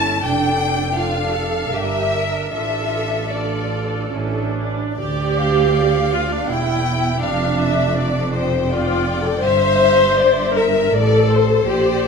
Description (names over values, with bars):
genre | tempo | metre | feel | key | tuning
classical, slow romantic movement for string orchestra | 65-84 BPM | 3/4 | rubato | D minor | A4 = 439 Hz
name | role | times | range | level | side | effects
warm symphonic violin section | melody | 0.0-12.1 s | C5 to A5 | -26 LUFS | left 2 dB | none
rich chamber violin section | second line | 0.0-12.1 s | C5 to A5 | -24 LUFS | left 5 dB | none
rich chamber viola section | accompaniment | 0.0-12.1 s | C#4 to C5 | -19 LUFS | left 1 dB | none
clear chamber double bass section | bass | 0.0-12.1 s | E1 to D2 | -24 LUFS | right 2 dB | none
rich studio cello section | bass | 0.0-12.1 s | D2 to Bb4 | -24 LUFS | right 3 dB | none
room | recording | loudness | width
moderate scoring stage reverb, RT60 1.8 s | none | -16 LUFS | side -5 dB against mid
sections
0.0-5.0 A section; 5.0-12.1 B section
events
none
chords
0.2 Dm/F; 1.7 Gm; 2.5 Dm/A; 4.1 A; 5.0 Dm; 7.2 Dm/F; 9.4 G5